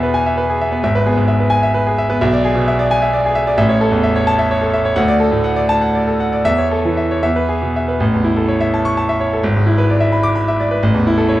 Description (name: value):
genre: classical, virtuoso piano study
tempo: 77-88 BPM (dotted quarters)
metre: 6/8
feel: rubato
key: A major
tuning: A4 = 440 Hz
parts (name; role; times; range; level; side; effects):
- bright concert grand piano; solo; 0.0-11.4 s; G#1 to D6; -13 LUFS; equal; none
room: moderate recital hall reverb, RT60 1.6 s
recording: dark, warm production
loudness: -13 LUFS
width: side -15 dB against mid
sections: 0.0-8.0 A section; 8.0-11.4 B section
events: none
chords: 0.0 E; 0.8 E/G#; 2.2 E7/B; 3.6 A; 5.0 D; 6.5 A/E; 7.2 E; 8.0 A; 9.4 E7/G#; 10.8 A